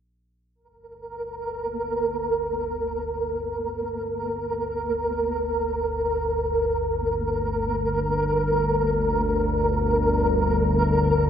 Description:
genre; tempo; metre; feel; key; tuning
dark ambient drone; free time; none; none; G minor; A4 = 440 Hz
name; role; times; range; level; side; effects
analog drone; drone; 1.3-11.3 s; G1 to D2; -27 LUFS; equal; chorus
flickering grainy texture; texture; 1.0-11.3 s; Bb4; -24 LUFS; equal; built-in reverb
room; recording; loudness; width
wet spring reverb, RT60 2.4 s; none; -22 LUFS; side -8 dB against mid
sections
0.6-11.3 A section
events
fade-in on synth drone 0.6-11.3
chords
0.6 Gm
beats
free time

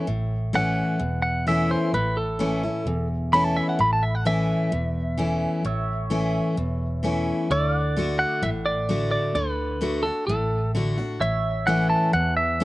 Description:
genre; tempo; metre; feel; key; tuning
country; 129 BPM; 4/4; straight; D major; A4 = 440 Hz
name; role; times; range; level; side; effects
picked steel-string acoustic guitar; accompaniment; 0.0-12.6 s; E2 to F#4; -25 LUFS; left 1 dB; none
pedal steel guitar; sustained chords; 0.0-12.6 s; C#5 to F#5; -34 LUFS; right 2 dB; lush chorus
vintage muted fingered electric bass; bass; 0.1-12.6 s; E1 to E2; -28 LUFS; right 1 dB; none
clean electric guitar; melody; 0.6-12.6 s; A4 to B5; -24 LUFS; right 1 dB; none
room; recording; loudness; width
little or no reverb; recorded outdoors, with no room sound, nothing above 10.9 kHz; -21 LUFS; side -18 dB against mid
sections
0.0-5.7 A section; 5.7-7.5 B section; 7.5-12.6 C section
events
clean electric guitar solo 0.0-5.7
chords
0.0 A; 7.5 D; 11.2 A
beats
| 0.09 0.55 1.01 1.48 | 1.94 2.40 2.87 3.33 | 3.79 4.26 4.72 5.19 | 5.65 6.11 6.58 7.04 | 7.50 7.97 8.43 8.89 | 9.36 9.82 10.29 10.75 | 11.21 11.68 12.14 12.61

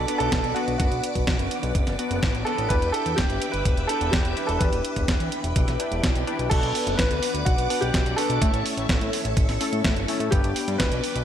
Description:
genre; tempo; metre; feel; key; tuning
italo disco; 126 BPM; 4/4; straight; B minor; A4 = 439 Hz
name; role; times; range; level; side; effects
clear grand piano; melody; 0.0-11.2 s; F#4 to B4; -28 LUFS; right 2 dB; tape echo
string machine, full ensemble; sustained chords; 0.0-11.2 s; A4 to D6; -31 LUFS; equal; phaser, ensemble chorus
chorused polysynth; stabs; 0.0-11.2 s; A3 to F#5; -30 LUFS; left 4 dB; none
fat analog bass; bass; 0.0-11.2 s; D1 to A2; -28 LUFS; equal; none
clean 12-bit digital drum machine; drums; 0.1-11.2 s; crash cymbal, hi-hat, snare drum; -29 LUFS; right 1 dB; gated reverb
electronic kick drum; drums; 0.3-10.9 s; none; -24 LUFS; equal; none
room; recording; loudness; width
light reverb, digital ambience; none; -21 LUFS; side -9 dB against mid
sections
0.0-6.5 A section; 6.5-11.2 B section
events
none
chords
0.0 Bm; 2.7 Em7; 6.5 Bm; 8.4 A; 10.3 G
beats
0.32 | 0.80 1.27 1.75 2.23 | 2.70 3.18 3.65 4.13 | 4.61 5.08 5.56 6.04 | 6.51 6.99 7.46 7.94 | 8.42 8.89 9.37 9.85 | 10.32 10.80

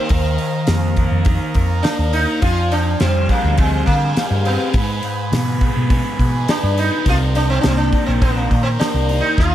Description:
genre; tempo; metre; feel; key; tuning
psychedelic rock; 104 BPM; 4/4; straight; unclear; A4 = 440 Hz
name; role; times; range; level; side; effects
sitar; melody; 0.0-9.5 s; Ab3 to F4; -21 LUFS; right 1 dB; dub echo
overdriven combo organ; sustained chords; 0.0-9.5 s; Bb4 to Cb6; -29 LUFS; right 6 dB; none
thick fuzz guitar; riff; 0.0-9.5 s; Ab2 to Bb4; -22 LUFS; left 1 dB; distortion, phaser
woody fretless electric bass; bass; 0.1-9.5 s; Bb1 to D3; -18 LUFS; equal; none
damped 70s drum kit; drums; 0.1-9.5 s; hi-hat, kick drum, snare drum; -20 LUFS; equal; none
room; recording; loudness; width
small room ambience; echo-heavy mix; -15 LUFS; side -12 dB against mid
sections
0.0-9.5 A section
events
drum fill 9.4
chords
0.1 Ebsus2; 2.4 Fmadd9; 4.7 Abm; 7.1 Cm7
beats
| 0.11 0.69 1.27 1.85 | 2.43 3.01 3.59 4.17 | 4.74 5.32 5.90 6.48 | 7.06 7.64 8.22 8.80 | 9.38

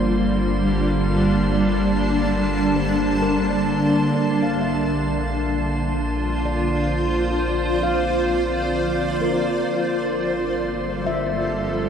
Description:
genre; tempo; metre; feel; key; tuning
ambient; 65 BPM; 3/4; straight; unclear; A4 = 438 Hz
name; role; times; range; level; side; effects
granular cloud pad; sustained chords; 0.0-11.9 s; G3 to A5; -21 LUFS; equal; built-in reverb
handpan; arpeggios; 0.0-11.9 s; Bb4 to F5; -30 LUFS; left 2 dB; ping-pong delay
warm sub bass; bass; 0.0-11.9 s; G1 to Bb1; -28 LUFS; equal; none
bowed-like drone; drone; 0.0-11.9 s; D3 to Bb3; -26 LUFS; equal; built-in reverb
drifting glass-harmonics texture; texture; 0.0-11.9 s; C5 to C6; -33 LUFS; right 1 dB; chorus, built-in reverb
room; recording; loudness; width
wet huge ambient reverb, RT60 7.9 s; dark, warm production; -19 LUFS; side -7 dB against mid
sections
0.0-11.9 A section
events
fade-in on handpan 0.0-11.9; fade-out on sub bass 0.0-11.9; fade-out on synth texture 0.0-11.9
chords
0.0 Gm7; 4.1 Bbmaj7; 9.7 Gm7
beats
0.45 | 1.38 2.30 3.22 | 4.14 5.07 5.99 | 6.91 7.84 8.76 | 9.68 10.61 11.53

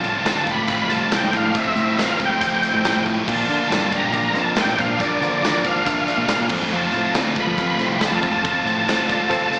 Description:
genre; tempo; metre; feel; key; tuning
classic rock; 139 BPM; 4/4; straight; unclear; A4 = 441 Hz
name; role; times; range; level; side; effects
overdriven tonewheel organ; melody; 0.0-9.6 s; D5 to B5; -24 LUFS; equal; slow rotary speaker, chorus vibrato, slapback echo, plate reverb
octave-fuzz lead guitar; second line; 0.0-9.6 s; Bb3 to G4; -31 LUFS; equal; distortion, plate reverb, slapback echo
sludgy distorted guitar; riff; 0.0-9.6 s; A2 to F4; -25 LUFS; equal; overdrive, slapback echo
growling fingered electric bass; bass; 0.0-8.8 s; C2 to F3; -28 LUFS; equal; overdrive
big rock drum kit; drums; 0.0-9.6 s; crash cymbal, hi-hat, kick drum, snare drum, tambourine; -29 LUFS; equal; none
reed electric piano; accompaniment; 3.3-9.6 s; C4 to F5; -32 LUFS; equal; fast tremolo, plate reverb
room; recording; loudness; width
moderate club reverb, RT60 0.5 s; live gig heard through the venue's PA, recital hall reverb, small speaker sound; -20 LUFS; mono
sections
0.0-9.6 A section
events
none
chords
0.0 F; 3.3 Bb; 6.5 F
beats
0.26 0.69 1.11 | 1.55 1.98 2.41 2.84 | 3.27 3.70 4.13 4.56 | 4.99 5.42 5.86 6.29 | 6.72 7.15 7.58 8.01 | 8.44 8.87 9.30

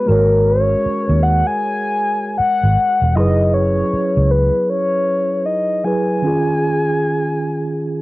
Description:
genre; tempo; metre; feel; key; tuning
R&B; 78 BPM; 4/4; swing 62% on 16ths; G# minor; A4 = 440 Hz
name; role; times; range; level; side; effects
mellow horn-like synth lead; melody; 0.0-8.0 s; A#4 to G#5; -18 LUFS; left 2 dB; chorus, cassette tape
mellow tine electric piano; accompaniment; 0.0-8.0 s; D#3 to C#5; -20 LUFS; right 2 dB; medium stereo tremolo, cassette tape
vintage muted fingered electric bass; bass; 0.1-4.5 s; E1 to D#2; -16 LUFS; equal; none
room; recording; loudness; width
light reverb; home recording on cassette; -14 LUFS; side -19 dB against mid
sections
0.0-8.0 A section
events
none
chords
0.0 G#9sus4; 3.2 F#9sus4; 6.2 D#9sus4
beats
| 0.07 0.84 1.61 2.38 | 3.15 3.92 4.69 5.46 | 6.23 7.00 7.77

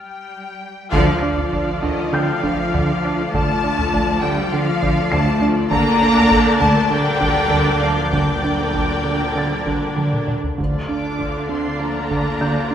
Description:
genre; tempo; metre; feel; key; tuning
cinematic, suspense film score; 99 BPM; 4/4; straight; D minor; A4 = 437 Hz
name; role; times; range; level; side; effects
rich studio violin section; melody; 0.0-12.7 s; Eb5 to D6; -24 LUFS; left 4 dB; none
rich studio cello section; bass; 0.0-12.7 s; Eb3 to D4; -23 LUFS; equal; none
felt-muted upright piano; texture; 0.0-12.7 s; G5 to C7; -30 LUFS; left 1 dB; none
rich studio violin section; texture; 0.0-12.7 s; D6 to A6; -32 LUFS; left 3 dB; none
rich studio violin section; second line; 0.9-12.7 s; F4 to D5; -27 LUFS; left 1 dB; none
clear studio viola section; accompaniment; 0.9-12.7 s; D3 to F4; -25 LUFS; right 1 dB; none
dark French horn section; sustained chords; 0.9-12.0 s; Bb2 to F4; -29 LUFS; left 4 dB; none
fat analog bass; riff; 0.9-12.7 s; D3 to D4; -22 LUFS; right 2 dB; none
clear studio double bass section; bass; 0.9-12.7 s; D2; -29 LUFS; right 1 dB; none
taiko ensemble; drums; 0.9-12.7 s; none; -26 LUFS; equal; none
timpani; percussion; 10.6-11.5 s; D3; -35 LUFS; equal; none
room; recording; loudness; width
wet recital hall reverb, RT60 1.4 s; recorded in a church or concert hall; -16 LUFS; side -9 dB against mid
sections
0.9-12.7 A section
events
break 0.0-0.9; drum fill 0.3-0.9, 10.0-10.6; band accent 0.9-1.5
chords
0.0 N.C.; 0.9 Dm; 5.7 Gm/D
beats
0.30 | 0.92 1.52 2.13 2.73 | 3.33 3.93 4.52 5.11 | 5.70 6.30 6.90 7.50 | 8.12 8.74 9.36 9.97 | 10.59 11.19 11.80 12.41

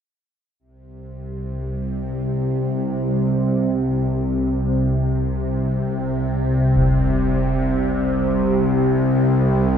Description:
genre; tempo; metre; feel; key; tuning
dark ambient drone; free time; none; none; unclear; A4 = 439 Hz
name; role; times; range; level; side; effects
bowed-like drone; drone; 1.0-9.8 s; C2 to C3; -18 LUFS; equal; built-in reverb, phaser
concert bass drum; percussion; 6.8-7.0 s; none; -27 LUFS; equal; low-pass filter on kick
room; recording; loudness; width
wet huge ambient reverb, RT60 7.8 s; dark, warm production; -18 LUFS; side -8 dB against mid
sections
0.6-9.8 A section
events
fade-in on drum 0.6-9.8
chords
none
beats
free time

